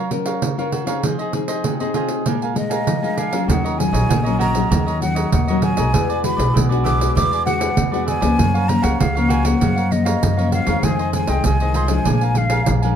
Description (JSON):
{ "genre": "samba and choro", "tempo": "98 BPM", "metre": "4/4", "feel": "straight", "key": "Eb minor", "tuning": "A4 = 444 Hz", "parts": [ { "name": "cavaquinho", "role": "accompaniment", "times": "0.0-13.0 s", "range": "D4 to Ab5", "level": "-26 LUFS", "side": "right 5 dB", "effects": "none" }, { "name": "nylon-string guitar", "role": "accompaniment", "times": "0.0-13.0 s", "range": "F2 to Bb4", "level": "-22 LUFS", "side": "left 4 dB", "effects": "none" }, { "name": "pandeiro", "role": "percussion", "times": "0.1-13.0 s", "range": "none", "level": "-22 LUFS", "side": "right 4 dB", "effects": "none" }, { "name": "breathy mellow silver concert flute", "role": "melody", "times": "2.6-12.7 s", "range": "Eb5 to D6", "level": "-23 LUFS", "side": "equal", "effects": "slapback echo, plate reverb" }, { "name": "upright bass", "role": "bass", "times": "3.5-13.0 s", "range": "Bb1 to Gb2", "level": "-20 LUFS", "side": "equal", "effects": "none" } ], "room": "moderate studio reverb, RT60 0.8 s", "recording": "dark, warm production", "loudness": "-16 LUFS", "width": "side -8 dB against mid", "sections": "0.0-3.5 A section; 3.5-13.0 B section", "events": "none", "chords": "0.0 Gbmaj7; 1.0 Fm7; 2.3 Bb7; 3.5 Ebm9; 5.9 E9; 8.4 Gbmaj7; 10.8 Fm7; 12.1 Bb7" }